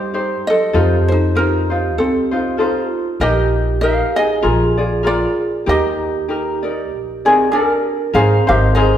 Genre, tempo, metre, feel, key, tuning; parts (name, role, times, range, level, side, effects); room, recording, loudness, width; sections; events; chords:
Hawaiian; 97 BPM; 4/4; swing 56% on 8ths; Eb major; A4 = 440 Hz
ukulele; melody; 0.0-9.0 s; C4 to F5; -17 LUFS; equal
vibraphone with medium mallets; second line; 0.0-9.0 s; C4 to Bb4; -22 LUFS; right 6 dB
ukulele; accompaniment; 0.0-9.0 s; Eb4 to Eb5; -20 LUFS; left 2 dB
upright bass; bass; 0.0-9.0 s; Ab1 to G2; -19 LUFS; equal
wet recital hall reverb, RT60 1.6 s; recorded in a church or concert hall; -14 LUFS; side -10 dB against mid
0.0-8.1 A section
0.0 Cm; 0.7 F7; 3.2 Eb/Bb; 4.4 Bb7; 5.7 Ebmaj7; 8.1 Abadd9